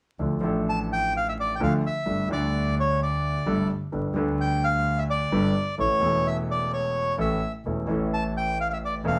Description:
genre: tango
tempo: 129 BPM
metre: 4/4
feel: rubato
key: D harmonic minor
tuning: A4 = 438 Hz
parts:
  - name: clear concert grand piano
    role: accompaniment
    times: 0.2-9.2 s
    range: E1 to A4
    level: -30 LUFS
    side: equal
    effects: none
  - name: dark double bass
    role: bass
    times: 0.2-9.2 s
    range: E1 to D2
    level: -32 LUFS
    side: equal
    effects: none
  - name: bandoneon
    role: melody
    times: 0.7-9.2 s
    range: C#5 to A5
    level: -28 LUFS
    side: equal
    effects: none
room: wet studio reverb, RT60 0.6 s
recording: band playing live in one room, vinyl crackle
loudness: -25 LUFS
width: mono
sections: 0.2-9.2 A section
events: none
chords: 0.2 Dm; 2.1 Gsus2; 3.9 Gadd9; 5.8 A

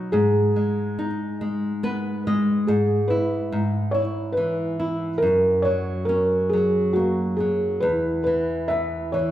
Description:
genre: children's music, lullaby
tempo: 47 BPM (dotted quarters)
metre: 6/8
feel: rubato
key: unclear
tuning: A4 = 440 Hz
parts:
  - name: flamenco guitar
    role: accompaniment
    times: 0.0-9.3 s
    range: E2 to D#5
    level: -23 LUFS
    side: equal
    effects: none
  - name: felt-muted upright piano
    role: melody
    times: 0.1-9.3 s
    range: F#4 to E5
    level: -22 LUFS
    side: equal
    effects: none
room: wet recital hall reverb, RT60 1.5 s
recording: recorded in a church or concert hall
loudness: -20 LUFS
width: side -12 dB against mid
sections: 0.0-9.3 A section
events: nylon-string guitar fill 1.4-2.7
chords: 0.1 G#m; 2.7 E/G#; 5.2 F#; 7.8 E5

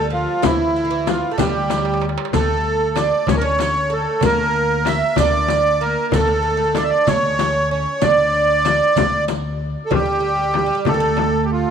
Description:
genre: Arabic maqam ensemble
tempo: 63 BPM (dotted quarters)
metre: 6/8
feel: straight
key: D maqam nahawand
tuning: A4 = 443 Hz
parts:
  - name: accordion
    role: melody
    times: 0.0-11.7 s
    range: E4 to E5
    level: -18 LUFS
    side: right 2 dB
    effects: light tremolo tuning
  - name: oud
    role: second line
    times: 0.0-11.7 s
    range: D3 to D4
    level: -25 LUFS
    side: right 9 dB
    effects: none
  - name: upright bass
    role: bass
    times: 0.0-11.6 s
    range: D2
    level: -25 LUFS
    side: left 2 dB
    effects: none
  - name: darbuka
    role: percussion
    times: 0.4-11.3 s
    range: none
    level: -28 LUFS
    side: right 7 dB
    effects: none
  - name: frame drum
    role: percussion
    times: 0.4-11.3 s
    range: none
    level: -23 LUFS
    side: left 14 dB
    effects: none
  - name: riq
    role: percussion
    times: 0.4-9.4 s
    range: none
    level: -31 LUFS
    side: right 10 dB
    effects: none
room: moderate plate reverb, RT60 3.2 s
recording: 1960s-style stereo with parts hard left and right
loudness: -15 LUFS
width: side -7 dB against mid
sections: 0.0-9.9 A section; 9.9-11.7 B section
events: drum fill 1.7-2.3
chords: none

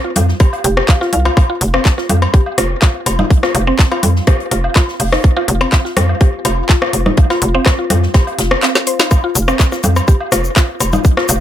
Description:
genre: minimal techno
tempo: 124 BPM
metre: 4/4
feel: straight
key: unclear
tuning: A4 = 440 Hz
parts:
  - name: mallet-like synth pluck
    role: riff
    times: 0.0-11.2 s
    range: C4 to F5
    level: -20 LUFS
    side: equal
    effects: chorus, sidechain pumping, tape echo
  - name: warbly tape-like pad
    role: texture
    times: 0.0-11.4 s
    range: C4 to F5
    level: -29 LUFS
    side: left 3 dB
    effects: none
  - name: hollow knocking FM bass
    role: bass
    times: 0.2-11.4 s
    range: F1 to F2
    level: -15 LUFS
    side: equal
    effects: sidechain pumping
  - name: garage drum kit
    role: drums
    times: 0.2-11.4 s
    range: handclaps, hi-hat, snare drum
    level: -17 LUFS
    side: left 1 dB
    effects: none
  - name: natural country drum kit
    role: drums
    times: 0.2-11.4 s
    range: hi-hat, snare drum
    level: -27 LUFS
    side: left 3 dB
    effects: sidechain pumping on hats, high-pass filter on hats, high-pass filter on snare, high-pass filter on room
  - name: electronic congas, woodblock, rim click and cowbell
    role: percussion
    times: 0.2-11.4 s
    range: none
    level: -18 LUFS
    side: left 2 dB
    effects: overdrive, tape echo
  - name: electronic kick drum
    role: drums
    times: 0.4-11.1 s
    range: none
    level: -10 LUFS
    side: equal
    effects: none
  - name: egg shaker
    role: percussion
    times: 9.1-11.4 s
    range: none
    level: -22 LUFS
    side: left 4 dB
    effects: none
room: little or no reverb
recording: none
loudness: -11 LUFS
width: side -11 dB against mid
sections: 0.0-11.4 A section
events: drum fill 8.7-9.1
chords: 0.0 F5

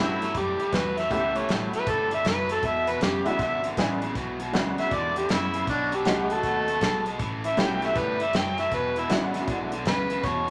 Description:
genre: electric blues shuffle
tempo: 158 BPM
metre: 4/4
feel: swing 65% on 8ths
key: unclear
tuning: A4 = 439 Hz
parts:
  - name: overdriven harmonica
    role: melody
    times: 0.0-10.5 s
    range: D4 to G5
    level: -29 LUFS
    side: equal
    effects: none
  - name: honky-tonk upright piano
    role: accompaniment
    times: 0.0-9.7 s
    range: G#3 to G#4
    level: -33 LUFS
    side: equal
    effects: none
  - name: overdriven electric guitar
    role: riff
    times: 0.0-10.5 s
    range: E2 to A3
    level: -33 LUFS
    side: equal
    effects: none
  - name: vintage muted fingered electric bass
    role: bass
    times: 0.0-10.5 s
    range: E1 to G2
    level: -41 LUFS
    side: equal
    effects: none
  - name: natural country drum kit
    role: drums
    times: 0.2-10.4 s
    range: hi-hat, kick drum, snare drum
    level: -32 LUFS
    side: equal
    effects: none
room: moderate large studio reverb, RT60 1.3 s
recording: none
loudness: -26 LUFS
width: mono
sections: 0.0-10.5 A section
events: harmonica solo 0.0-10.5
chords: 0.0 A9; 2.6 E9; 5.7 B9; 7.2 A9; 8.7 E9

